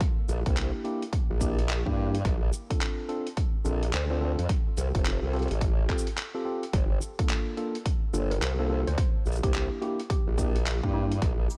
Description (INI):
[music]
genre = glitch hop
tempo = 107 BPM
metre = 4/4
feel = swing 63% on 16ths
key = unclear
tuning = A4 = 440 Hz
[part]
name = boom bap sampler-style drum kit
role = drums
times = 0.0-11.6 s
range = handclaps, hi-hat, shaker, snare drum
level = -38 LUFS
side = equal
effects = small room ambience
[part]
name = electronic kick drum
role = drums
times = 0.0-11.4 s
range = none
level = -30 LUFS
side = equal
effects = small room ambience
[part]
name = formant-sweep wobble bass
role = bass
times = 0.3-11.5 s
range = F1 to G2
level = -30 LUFS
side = equal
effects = chorus, overdrive
[part]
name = mellow tine electric piano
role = stabs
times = 0.5-11.1 s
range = Bb3 to A4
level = -36 LUFS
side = equal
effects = vintage 12-bit sampler grit, sidechain pumping, dub echo
[part]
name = woody wave-folded pluck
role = melody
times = 8.3-11.3 s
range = E4 to C5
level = -41 LUFS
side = equal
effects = chorus, dub echo
[sound]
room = little or no reverb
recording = dark, warm production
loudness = -28 LUFS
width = mono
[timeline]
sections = 0.0-11.6 A section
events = break 6.2-6.7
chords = 0.0 C7 (rootless); 2.2 Bbmaj7; 4.5 Fadd9; 6.7 Gm7; 9.0 C7 (rootless)